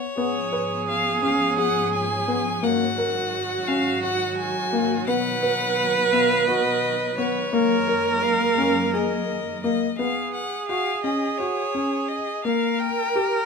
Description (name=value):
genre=contemporary instrumental, chamber music in an uneven meter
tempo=171 BPM (eighths)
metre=7/8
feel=straight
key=unclear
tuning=A4 = 438 Hz
part: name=clear violin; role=melody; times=0.0-13.5 s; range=C#5 to G#5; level=-28 LUFS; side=left 5 dB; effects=none
part: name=felt-muted upright piano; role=arpeggios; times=0.0-13.4 s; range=A#3 to B4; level=-25 LUFS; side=left 3 dB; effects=none
part: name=clear viola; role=second line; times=0.2-13.5 s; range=F#4 to B4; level=-24 LUFS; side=right 4 dB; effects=none
part: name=rich symphonic string section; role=sustained chords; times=0.2-10.0 s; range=F#2 to C#4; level=-30 LUFS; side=equal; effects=none
room=light reverb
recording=minimal, uncompressed stereo recording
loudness=-20 LUFS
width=side -5 dB against mid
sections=0.0-10.0 A section; 10.0-13.5 B section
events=none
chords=0.2 C#7/G#; 2.6 F#6/G#; 5.1 B; 7.5 F#69; 10.0 Bsus2; 12.5 A#5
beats=| 0.18 0.53 0.88 1.23 1.58 1.93 2.28 | 2.63 2.98 3.33 3.68 4.03 4.38 4.73 | 5.08 5.43 5.78 6.13 6.48 6.83 7.18 | 7.53 7.88 8.23 8.58 8.94 9.29 9.64 | 9.99 10.34 10.69 11.04 11.40 11.75 12.10 | 12.45 12.80 13.16